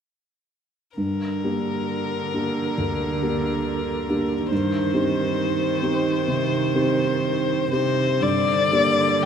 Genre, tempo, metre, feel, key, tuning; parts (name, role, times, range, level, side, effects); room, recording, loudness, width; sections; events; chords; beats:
classical, slow romantic movement for piano trio; 57-70 BPM; 4/4; rubato; G minor; A4 = 443 Hz
warm violin; melody; 1.0-9.3 s; Bb4 to D5; -24 LUFS; left 5 dB
warm cello; second line; 1.0-9.3 s; C3 to Eb3; -27 LUFS; right 5 dB
warm baby grand piano; accompaniment; 1.0-9.3 s; D2 to G4; -24 LUFS; right 1 dB
wet cathedral reverb, RT60 5.8 s; in a vast, echoing space; -20 LUFS; side -7 dB against mid
1.0-8.2 A section; 8.2-9.3 B section
1.0 Gm; 4.5 Cm/G; 8.2 Gm
| 0.97 1.89 2.78 3.65 | 4.51 5.38 6.28 7.23 | 8.22 9.23